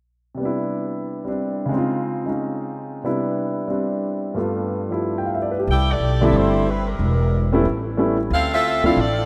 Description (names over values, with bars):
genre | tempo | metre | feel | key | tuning
jazz, big band swing | 182 BPM | 4/4 | swing 61% on 8ths | C major | A4 = 441 Hz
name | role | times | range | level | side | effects
clear grand piano | accompaniment | 0.3-9.0 s | G2 to G5 | -24 LUFS | equal | none
bright saxophone section | melody | 5.7-9.3 s | G3 to G5 | -24 LUFS | equal | none
upright bass | bass | 5.7-9.3 s | E1 to D2 | -23 LUFS | equal | none
room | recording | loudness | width
wet lush hall reverb, RT60 2.2 s | rough home demo mix | -22 LUFS | mono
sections
0.4-5.7 A section; 5.7-9.3 B section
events
none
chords
0.4 Cmaj7; 1.7 Dbmaj7; 3.0 Cmaj7; 4.4 G7; 5.7 C69; 7.0 Em7b5; 7.6 A7; 8.3 Dm9